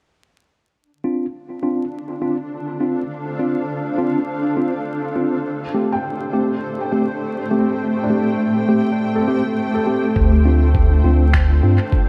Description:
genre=ambient dub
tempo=102 BPM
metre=4/4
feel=swing 60% on 16ths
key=D minor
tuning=A4 = 439 Hz
part: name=granular cloud pad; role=sustained chords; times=1.8-12.1 s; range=A3 to G5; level=-25 LUFS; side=equal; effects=built-in reverb
part: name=mellow tine electric piano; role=stabs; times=1.0-11.8 s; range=A3 to G4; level=-24 LUFS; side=equal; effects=low-pass filter, dub echo
part: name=felt-muted upright piano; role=arpeggios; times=5.9-10.8 s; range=C4 to G5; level=-30 LUFS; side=equal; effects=tape echo
part: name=warm sub bass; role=bass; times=10.2-11.8 s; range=D2 to G2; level=-16 LUFS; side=equal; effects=none
part: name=electronic kick drum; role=drums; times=10.2-12.1 s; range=none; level=-20 LUFS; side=equal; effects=none
part: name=electronic finger snaps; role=drums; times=11.3-11.5 s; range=none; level=-29 LUFS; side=equal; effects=dub echo
room=moderate echo chamber reverb, RT60 2.3 s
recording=vinyl crackle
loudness=-19 LUFS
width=mono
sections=0.7-10.2 A section; 10.2-12.1 B section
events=none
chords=0.7 Dm7; 5.5 Am7; 10.2 Dm7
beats=| 0.75 1.34 1.93 2.51 | 3.10 3.69 4.28 4.87 | 5.46 6.04 6.63 7.22 | 7.81 8.40 8.98 9.57 | 10.16 10.75 11.34 11.93

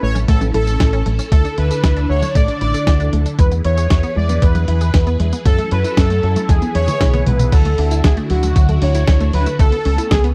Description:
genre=italo disco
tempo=116 BPM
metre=4/4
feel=straight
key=unclear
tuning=A4 = 439 Hz
part: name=analog synth brass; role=melody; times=0.0-10.2 s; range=F#4 to D5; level=-24 LUFS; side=equal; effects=chorus, tape echo
part: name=phased string machine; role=sustained chords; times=0.0-10.3 s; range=D3 to B4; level=-28 LUFS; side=equal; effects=ensemble chorus, phaser
part: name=unison pluck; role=arpeggios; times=0.0-10.3 s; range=F#3 to A4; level=-29 LUFS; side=equal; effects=tape echo
part: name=fingered electric bass with an envelope filter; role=bass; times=0.0-10.3 s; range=A1 to F#2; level=-19 LUFS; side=equal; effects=none
part: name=dusty soul sampler-style drum kit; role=drums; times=0.2-10.3 s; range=crash cymbal, hi-hat, snare drum, tambourine, toms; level=-25 LUFS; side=equal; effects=none
part: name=electronic kick drum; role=drums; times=0.3-10.2 s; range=none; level=-16 LUFS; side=equal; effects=none
room=little or no reverb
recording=dry, close 1970s-style studio recording, vinyl crackle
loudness=-15 LUFS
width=mono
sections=0.0-7.5 A section; 7.5-10.3 B section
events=drum fill 6.5-7.5; band accent 7.0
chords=0.0 A; 1.3 Dsus2; 3.4 E; 5.5 F#m7; 6.5 E; 7.5 Dadd9; 9.6 Aadd9/C#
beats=0.28 0.80 | 1.32 1.83 2.35 2.87 | 3.39 3.90 4.42 4.94 | 5.46 5.97 6.49 7.01 | 7.53 8.04 8.56 9.08 | 9.59 10.11

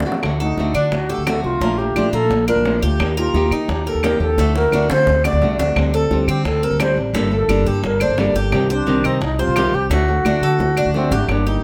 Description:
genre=latin, Cuban son and guajira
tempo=174 BPM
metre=4/4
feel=straight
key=unclear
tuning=A4 = 442 Hz
part: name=nylon-string guitar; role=accompaniment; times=0.0-11.6 s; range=C3 to A4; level=-25 LUFS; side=equal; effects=none
part: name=bongos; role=percussion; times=0.0-11.6 s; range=none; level=-30 LUFS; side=equal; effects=none
part: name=upright bass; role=bass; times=0.2-11.6 s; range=G1 to Eb3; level=-22 LUFS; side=equal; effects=none
part: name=claves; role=percussion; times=0.2-11.5 s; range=none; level=-28 LUFS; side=equal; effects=none
part: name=bright reedy wooden-headed alto flute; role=melody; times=0.4-11.6 s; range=C4 to D5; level=-22 LUFS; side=equal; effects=none
part: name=Cuban tres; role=arpeggios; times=0.4-11.6 s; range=A3 to C5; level=-27 LUFS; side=equal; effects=none
room=light reverb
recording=close, detailed microphones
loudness=-18 LUFS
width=mono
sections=0.2-11.3 A section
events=drum fill 0.0, 4.4-5.8, 10.3-11.3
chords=0.2 D; 1.6 Bbmaj7; 3.0 Eb; 4.4 D; 5.8 D7sus4; 7.1 Gmadd9; 8.5 Cm; 9.9 D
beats=| 0.23 0.57 0.92 1.27 | 1.61 1.96 2.30 2.65 | 3.00 3.34 3.69 4.03 | 4.38 4.72 5.07 5.42 | 5.76 6.11 6.45 6.80 | 7.14 7.49 7.83 8.18 | 8.53 8.87 9.22 9.56 | 9.91 10.25 10.60 10.94 | 11.29

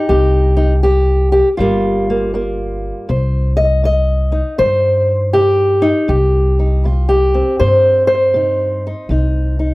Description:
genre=acoustic country blues, solo or duo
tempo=80 BPM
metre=4/4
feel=swing 64% on 8ths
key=C minor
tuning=A4 = 440 Hz
part: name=fingerpicked old ladder-braced acoustic guitar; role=melody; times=0.0-9.7 s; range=G2 to Eb5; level=-14 LUFS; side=equal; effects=slapback echo
part: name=upright bass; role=bass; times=0.1-9.7 s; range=G1 to G2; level=-16 LUFS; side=equal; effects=none
room=little or no reverb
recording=dry, close 1970s-style studio recording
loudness=-12 LUFS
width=side -20 dB against mid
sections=0.0-3.1 A section; 3.1-9.7 B section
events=steel-string acoustic guitar solo 3.1-9.7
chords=0.0 Cm; 1.6 Gm7; 3.1 Cm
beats=| 0.10 0.85 1.60 2.35 | 3.10 3.85 4.60 5.35 | 6.10 6.85 7.60 8.35 | 9.10

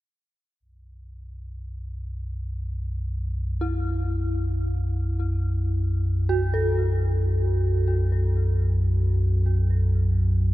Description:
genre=dark ambient drone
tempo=free time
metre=none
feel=none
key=unclear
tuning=A4 = 439 Hz
part: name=deep rumbling drone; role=drone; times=1.2-10.5 s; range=B1 to F#2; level=-23 LUFS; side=equal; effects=built-in reverb, wide subtle chorus
part: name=dark detuned synth bell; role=arpeggios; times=3.6-10.5 s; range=E4 to A4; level=-31 LUFS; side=right 1 dB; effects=chorus, phaser, ping-pong delay
room=moderate cathedral reverb, RT60 6.2 s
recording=in a vast, echoing space, cassette tape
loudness=-22 LUFS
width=side -16 dB against mid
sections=0.6-10.5 A section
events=none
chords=0.6 B5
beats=free time

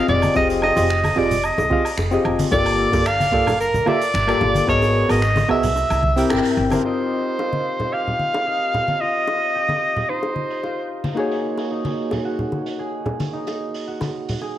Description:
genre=sunset chillout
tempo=111 BPM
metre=4/4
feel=straight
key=F dorian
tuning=A4 = 440 Hz
part: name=warm soprano saxophone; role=melody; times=0.0-10.9 s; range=Bb4 to F5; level=-20 LUFS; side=equal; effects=cassette tape, analog delay
part: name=soft electric-piano-like synth keys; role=accompaniment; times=0.0-14.6 s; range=Bb3 to G5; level=-22 LUFS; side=moving between left 4 dB and right 5 dB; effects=chorus, auto-pan, cassette tape, tape echo
part: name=upright bass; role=bass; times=0.1-6.7 s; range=F1 to D2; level=-24 LUFS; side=right 1 dB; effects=none
part: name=bongos and congas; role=percussion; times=0.1-14.5 s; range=none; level=-27 LUFS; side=left 1 dB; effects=none
part: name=jazz brush drum kit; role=drums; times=0.2-14.4 s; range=crash cymbal, finger snaps, hi-hat, shaker, woodblock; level=-32 LUFS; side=right 2 dB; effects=low-pass filter on hats, cassette tape, low-pass filter on cymbals, low-pass filter on perc, low-pass filter on snare, low-pass filter on room
part: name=electronic kick drum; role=drums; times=0.4-6.1 s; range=none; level=-26 LUFS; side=equal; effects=cassette tape
part: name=concert harp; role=arpeggios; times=6.8-14.6 s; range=Eb4 to Ab4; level=-30 LUFS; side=right 1 dB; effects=low-pass filter, cassette tape, tape echo
room=moderate lush hall reverb, RT60 1.7 s, small room ambience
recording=home recording on cassette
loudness=-18 LUFS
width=side -12 dB against mid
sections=0.0-6.8 A section; 6.8-14.6 B section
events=band accent 6.3; filter sweep on drum 6.8-14.6; filter sweep on harp 6.8-14.6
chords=0.0 Fm9; 2.5 Gm9; 4.7 Abm9; 5.8 C7; 6.8 F9sus4; 11.2 Ab9sus4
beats=| 0.36 0.90 1.44 1.98 | 2.52 3.06 3.60 4.14 | 4.68 5.22 5.76 6.30 | 6.84 7.39 7.93 8.47 | 9.01 9.55 10.09 10.63 | 11.17 11.71 12.25 12.79 | 13.33 13.87 14.41

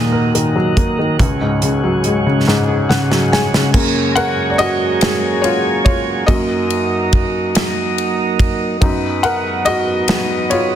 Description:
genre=six-eight pop ballad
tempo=47 BPM (dotted quarters)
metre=6/8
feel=straight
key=F# major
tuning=A4 = 440 Hz
part: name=felt-muted upright piano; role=accompaniment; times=0.0-10.8 s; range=C#2 to G#5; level=-16 LUFS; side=left 1 dB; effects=none
part: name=tonewheel organ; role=sustained chords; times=0.0-10.8 s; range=F#3 to G#4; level=-20 LUFS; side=right 3 dB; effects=slow rotary speaker
part: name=natural country drum kit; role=drums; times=0.3-10.7 s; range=crash cymbal, hi-hat, kick drum, ride cymbal, snare drum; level=-18 LUFS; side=equal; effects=soft clipping on snare
room=light reverb, small room reverb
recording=dense, heavily limited modern master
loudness=-13 LUFS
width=side -10 dB against mid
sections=0.0-3.7 A section; 3.7-10.8 B section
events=drum fill 2.5-3.7; felt piano fill 2.5-3.7; felt piano solo 3.7-10.8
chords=0.0 D#m; 1.2 C#sus4; 3.7 F#add9; 6.3 D#m/F#; 8.8 B/F#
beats=| 1.20 2.47 | 3.74 5.01 | 6.28 7.55 | 8.81 10.08

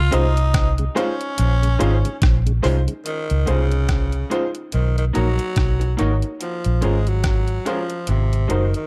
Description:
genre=lovers rock reggae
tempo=72 BPM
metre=4/4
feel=swing 58% on 16ths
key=Db major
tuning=A4 = 440 Hz
part: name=growling tenor saxophone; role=melody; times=0.0-8.9 s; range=C3 to F4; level=-29 LUFS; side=equal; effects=tape echo
part: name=vintage muted fingered electric bass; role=bass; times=0.0-8.7 s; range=Gb1 to Db2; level=-21 LUFS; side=equal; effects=none
part: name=clear grand piano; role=accompaniment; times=0.1-8.7 s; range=Db4 to Db5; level=-28 LUFS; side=equal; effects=none
part: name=mellow tonewheel organ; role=accompaniment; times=0.1-2.9 s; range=Db3 to F4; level=-35 LUFS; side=equal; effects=none
part: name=electric guitar through a small old amp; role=stabs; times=0.1-8.6 s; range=Ab3 to C5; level=-31 LUFS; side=equal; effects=dub echo
part: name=detuned 8-bit digital drum machine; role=drums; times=0.1-8.9 s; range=hi-hat, kick drum, rim click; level=-24 LUFS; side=equal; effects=dub echo
room=little or no reverb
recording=dark, warm production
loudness=-20 LUFS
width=mono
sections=0.0-3.1 A section; 3.1-8.9 B section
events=none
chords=0.0 Dbmaj7; 4.7 Cbmaj7; 6.4 Bbm7; 8.1 Ab7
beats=0.54 1.38 2.21 | 3.05 3.89 4.73 5.57 | 6.41 7.24 8.08

